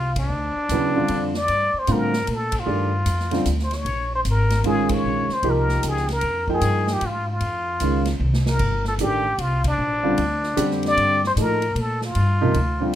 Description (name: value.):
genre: modal jazz.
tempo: 152 BPM.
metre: 3/4.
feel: swing 64% on 8ths.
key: unclear.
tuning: A4 = 439 Hz.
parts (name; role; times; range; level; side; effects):
trumpet with plunger mute; melody; 0.0-12.9 s; D4 to D5; -23 LUFS; left 1 dB; plate reverb.
upright bass; bass; 0.0-12.9 s; G1 to Bb2; -24 LUFS; equal; none.
swinging big-band drum kit; drums; 0.2-12.7 s; crash cymbal, hi-hat, kick drum, ride cymbal, snare drum, toms; -32 LUFS; right 1 dB; none.
warm baby grand piano; accompaniment; 0.7-12.9 s; C3 to G5; -23 LUFS; right 1 dB; none.
room: moderate studio ambience, RT60 0.5 s.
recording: none.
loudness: -19 LUFS.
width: side -11 dB against mid.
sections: 0.0-13.0 A section.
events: band accent 0.1, 2.5, 4.8, 9.6; drum fill 8.2-8.6.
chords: 0.0 G7sus2; 3.9 Bbm9; 8.6 Gm9.